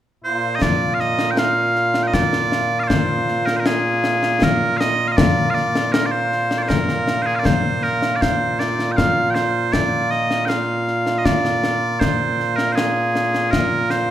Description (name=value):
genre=scottish traditional, Scottish pipe music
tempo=79 BPM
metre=3/4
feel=straight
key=Bb mixolydian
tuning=A4 = 440 Hz
part: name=loud bright bagpipes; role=melody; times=0.2-14.1 s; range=Bb2 to G5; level=-18 LUFS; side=right 1 dB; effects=none
part: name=concert snare drum and concert bass drum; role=drums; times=0.6-14.1 s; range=none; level=-21 LUFS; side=left 2 dB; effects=none
room=moderate recital hall reverb, RT60 1.5 s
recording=minimal, uncompressed stereo recording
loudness=-16 LUFS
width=side -11 dB against mid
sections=0.6-14.1 A section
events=none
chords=none